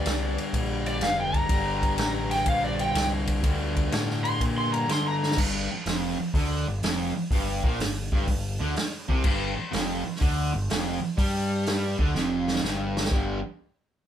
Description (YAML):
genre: blues rock power trio and southern rock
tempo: 124 BPM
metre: 4/4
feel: swing 68% on 8ths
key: G minor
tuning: A4 = 441 Hz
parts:
  - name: overdriven slide guitar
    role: melody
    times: 0.0-5.4 s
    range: D5 to C6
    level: -28 LUFS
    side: equal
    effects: none
  - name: fuzz guitar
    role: riff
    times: 0.0-13.4 s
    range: F2 to G3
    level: -29 LUFS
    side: equal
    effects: distortion
  - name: growling picked electric bass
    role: bass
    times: 0.0-13.4 s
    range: F1 to D3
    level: -30 LUFS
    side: equal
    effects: overdrive
  - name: vintage drum kit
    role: drums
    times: 0.1-13.3 s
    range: crash cymbal, hi-hat, kick drum, ride cymbal, snare drum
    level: -28 LUFS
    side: equal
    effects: none
room: light reverb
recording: band playing live in one room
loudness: -24 LUFS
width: side -10 dB against mid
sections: 0.0-5.4 A section; 5.4-13.1 B section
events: electric slide guitar solo 0.0-5.4; drum fill 5.1, 12.1-13.1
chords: 0.0 Gm; 5.4 G5